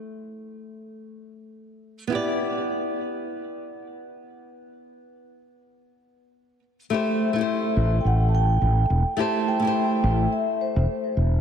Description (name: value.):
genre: sunset chillout.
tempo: 106 BPM.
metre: 4/4.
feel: swing 58% on 16ths.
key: A minor.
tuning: A4 = 440 Hz.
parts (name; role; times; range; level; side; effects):
flamenco guitar; accompaniment; 0.0-11.2 s; A3 to D5; -27 LUFS; left 1 dB; auto-pan, tape echo.
vibraphone with soft mallets; melody; 6.9-11.1 s; C5 to A5; -26 LUFS; equal; tape echo.
fretless electric bass; bass; 7.8-11.4 s; E1 to A1; -20 LUFS; equal; none.
room: moderate lush hall reverb, RT60 3.0 s.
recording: dreamy mix soaked in reverb.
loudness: -21 LUFS.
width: side -8 dB against mid.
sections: 0.0-6.9 A section; 6.9-11.4 B section.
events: none.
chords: 0.0 Am7; 2.1 Em7; 6.9 Am7.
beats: | 0.13 0.69 1.26 1.83 | 2.39 2.96 3.52 4.09 | 4.66 5.22 5.79 6.36 | 6.92 7.49 8.05 8.62 | 9.19 9.75 10.32 10.88.